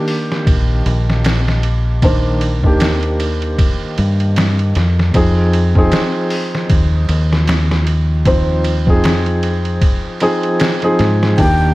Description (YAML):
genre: trip hop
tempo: 77 BPM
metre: 4/4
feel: swing 57% on 16ths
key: F dorian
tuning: A4 = 440 Hz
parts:
  - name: felt-muted upright piano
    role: accompaniment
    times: 0.0-11.7 s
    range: Eb3 to C5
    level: -18 LUFS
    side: equal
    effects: tremolo, low-pass filter, tape echo
  - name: trip hop sampler-style drum kit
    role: drums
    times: 0.1-11.6 s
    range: hi-hat, kick drum, ride cymbal, snare drum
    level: -17 LUFS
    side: equal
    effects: none
  - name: deep dub fingered electric bass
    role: bass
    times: 0.5-11.7 s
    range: Bb1 to Ab2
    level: -15 LUFS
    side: equal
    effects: tube saturation
  - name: breathy concert flute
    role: melody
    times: 11.4-11.7 s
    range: G5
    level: -16 LUFS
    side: left 1 dB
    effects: none
  - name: backwards swelling texture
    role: texture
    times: 11.4-11.7 s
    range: none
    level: barely audible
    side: none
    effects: none
room: digital ambience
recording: vinyl crackle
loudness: -12 LUFS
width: side -19 dB against mid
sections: 0.0-11.7 A section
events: filter sweep on felt piano 0.0-11.7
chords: 0.0 Ebmaj7; 5.1 Fm7